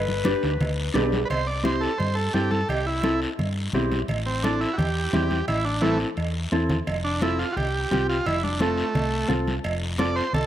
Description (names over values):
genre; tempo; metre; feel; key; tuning
latin, cumbia; 173 BPM; 4/4; straight; unclear; A4 = 439 Hz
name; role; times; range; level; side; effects
clear clarinet; second line; 0.0-1.0 s; B4; -30 LUFS; left 6 dB; none
hollow-body short-scale fingered electric bass; bass; 0.0-10.5 s; F1 to G2; -28 LUFS; equal; none
congas; percussion; 0.1-10.5 s; none; -30 LUFS; left 1 dB; none
mellow electric guitar; accompaniment; 0.3-10.2 s; C4 to B4; -28 LUFS; equal; none
guiro; percussion; 0.3-10.5 s; none; -36 LUFS; left 2 dB; none
timbales and cowbell; percussion; 0.4-10.5 s; none; -33 LUFS; right 5 dB; none
combo organ; melody; 1.3-10.5 s; E3 to D5; -27 LUFS; right 2 dB; none
room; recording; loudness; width
light reverb, studio reverb; rough home demo mix; -22 LUFS; side -11 dB against mid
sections
0.0-1.3 A section; 1.3-10.5 B section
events
clarinet solo 0.0-1.3; drum fill 0.4-1.3, 5.8-6.9; transistor combo organ solo 1.3-10.5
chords
0.0 G; 1.3 C; 4.1 Am; 6.9 F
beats
0.26 0.61 0.96 | 1.30 1.65 2.00 2.35 | 2.69 3.04 3.39 3.74 | 4.09 4.44 4.78 5.13 | 5.48 5.83 6.18 6.53 | 6.87 7.22 7.57 7.91 | 8.26 8.61 8.96 9.30 | 9.65 9.99 10.34